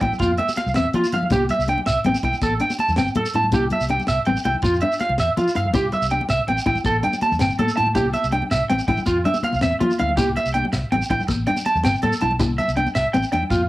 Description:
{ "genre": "highlife guitar band", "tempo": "108 BPM (dotted quarters)", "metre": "12/8", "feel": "straight", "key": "C major", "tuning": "A4 = 440 Hz", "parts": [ { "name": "nylon-string guitar", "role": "accompaniment", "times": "0.0-13.6 s", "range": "C4 to F4", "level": "-26 LUFS", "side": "left 3 dB", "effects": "cassette tape" }, { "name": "electric guitar at the edge of break-up", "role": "arpeggios", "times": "0.0-13.6 s", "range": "F4 to A5", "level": "-21 LUFS", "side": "right 2 dB", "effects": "cassette tape, tape echo" }, { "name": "fingered electric bass", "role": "bass", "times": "0.0-13.7 s", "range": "G1 to F3", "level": "-26 LUFS", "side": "equal", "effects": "none" }, { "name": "tight funk drum kit", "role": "drums", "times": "0.0-13.6 s", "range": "hi-hat, kick drum, snare drum", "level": "-30 LUFS", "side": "equal", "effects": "cassette tape" }, { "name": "congas", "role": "percussion", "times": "0.0-13.6 s", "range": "none", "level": "-26 LUFS", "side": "left 2 dB", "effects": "none" }, { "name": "shekere", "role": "percussion", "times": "0.1-13.6 s", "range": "none", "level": "-29 LUFS", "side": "equal", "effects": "none" } ], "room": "light reverb, small room reverb", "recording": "home recording on cassette", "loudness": "-18 LUFS", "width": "side -16 dB against mid", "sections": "0.0-13.7 A section", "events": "none", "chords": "0.2 F5; 1.3 C; 2.4 Am7; 3.5 C; 4.6 F5; 5.7 C; 6.9 Am7; 8.0 C; 9.1 F5; 10.2 C; 11.3 Am7; 12.4 C", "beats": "0.21 0.76 | 1.31 1.87 2.42 2.98 | 3.53 4.08 4.64 5.19 | 5.75 6.30 6.85 7.41 | 7.96 8.52 9.07 9.62 | 10.18 10.73 11.29 11.84 | 12.40 12.95 13.51" }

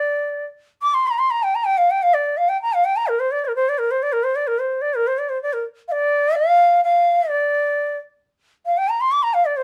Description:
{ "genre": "indian classical", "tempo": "128 BPM", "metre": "4/4", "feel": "straight", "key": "unclear", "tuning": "A4 = 440 Hz", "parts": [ { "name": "bright bansuri", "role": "solo", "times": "0.0-9.6 s", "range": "Bb4 to D6", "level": "-19 LUFS", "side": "equal", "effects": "none" } ], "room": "moderate studio ambience, RT60 0.5 s", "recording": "band playing live in one room", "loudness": "-20 LUFS", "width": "mono", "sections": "0.0-9.6 A section", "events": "speeding up 0.0-9.6", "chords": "none", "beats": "0.22 0.70 1.18 | 1.65 2.13 2.60 3.07 | 3.54 4.01 4.48 4.95 | 5.42 5.88 6.35 6.81 | 7.27 7.73 8.19 8.65 | 9.11 9.56" }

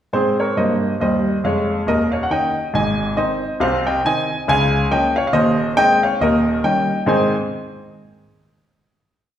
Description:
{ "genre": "jazz, stride piano", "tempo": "138 BPM", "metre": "4/4", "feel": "swing 59% on 8ths", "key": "Ab major", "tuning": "A4 = 441 Hz", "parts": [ { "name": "clear grand piano", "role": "solo", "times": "0.1-7.3 s", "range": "Eb1 to Ab5", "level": "-16 LUFS", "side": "equal", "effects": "none" } ], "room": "wet recital hall reverb, RT60 1.4 s", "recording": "recorded in a church or concert hall", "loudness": "-16 LUFS", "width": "side -10 dB against mid", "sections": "0.1-7.1 A section; 7.1-8.8 final chord", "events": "none", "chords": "0.1 Ab; 1.9 Eb7; 2.7 Ab; 3.6 Ab/C; 4.5 Bbm/Db; 5.3 Ab/Eb; 6.2 Eb7; 7.1 Ab", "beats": "| 0.12 0.56 0.99 1.43 | 1.86 2.29 2.73 3.16 | 3.60 4.03 4.47 4.90 | 5.34 5.77 6.21 6.64 | 7.07" }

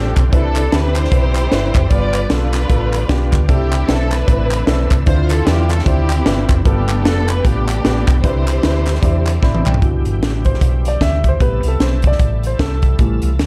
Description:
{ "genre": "uptempo gospel", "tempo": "152 BPM", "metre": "4/4", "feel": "swing 59% on 8ths", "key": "C major", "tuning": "A4 = 442 Hz", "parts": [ { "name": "warm studio string section", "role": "melody", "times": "0.0-9.4 s", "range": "B3 to D5", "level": "-24 LUFS", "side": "equal", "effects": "none" }, { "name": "warm upright piano", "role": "accompaniment", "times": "0.0-13.3 s", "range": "G2 to B5", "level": "-25 LUFS", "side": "equal", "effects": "none" }, { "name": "bright tonewheel organ", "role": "sustained chords", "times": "0.0-13.5 s", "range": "C3 to E5", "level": "-32 LUFS", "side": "equal", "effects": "none" }, { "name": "hollow-body short-scale fingered electric bass", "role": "bass", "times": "0.0-13.5 s", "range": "F1 to E2", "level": "-20 LUFS", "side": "equal", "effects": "none" }, { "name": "crisp fusion drum kit", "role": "drums", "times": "0.2-13.5 s", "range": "hi-hat, kick drum, snare drum, toms", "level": "-19 LUFS", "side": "equal", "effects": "none" }, { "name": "group handclap", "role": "percussion", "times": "0.2-9.7 s", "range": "none", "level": "-29 LUFS", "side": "equal", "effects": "none" } ], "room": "light reverb, studio reverb", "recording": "dark, warm production", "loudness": "-15 LUFS", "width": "mono", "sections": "0.0-9.8 A section; 9.8-13.5 B section", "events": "upright piano fill 9.2-9.8; drum fill 9.4-9.8; upright piano solo 9.8-13.5", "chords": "0.3 Cmaj9; 1.9 G7; 3.5 C69; 5.1 Dm9; 6.7 G9; 8.2 Cmaj9; 9.8 Cmaj7; 11.4 Am7", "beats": "| 0.33 0.72 1.12 1.51 | 1.91 2.30 2.70 3.10 | 3.49 3.89 4.28 4.68 | 5.07 5.47 5.87 6.26 | 6.66 7.05 7.45 7.84 | 8.24 8.63 9.03 9.43 | 9.82 10.22 10.61 11.01 | 11.41 11.80 12.20 12.60 | 12.99 13.39" }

